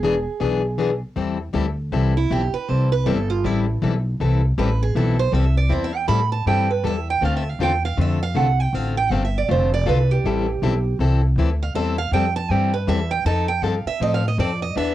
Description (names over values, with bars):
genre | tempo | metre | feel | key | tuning
acoustic string swing (jazz manouche) | 159 BPM | 4/4 | swing 61% on 8ths | A minor | A4 = 441 Hz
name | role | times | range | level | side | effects
picked steel-string acoustic guitar | melody | 0.0-14.9 s | E4 to B5 | -24 LUFS | right 7 dB | cassette tape
picked plugged-in steel-string acoustic guitar | accompaniment | 0.0-14.9 s | D3 to A4 | -24 LUFS | left 6 dB | cassette tape
upright bass | bass | 0.0-14.9 s | E1 to A2 | -21 LUFS | equal | none
room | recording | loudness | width
light reverb | home recording on cassette | -18 LUFS | side -13 dB against mid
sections
0.0-1.2 A section; 1.2-14.9 B section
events
steel-string acoustic guitar solo 1.2-14.9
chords
0.0 E7; 1.2 Am9; 7.2 Dm9; 10.2 Am9; 13.3 F7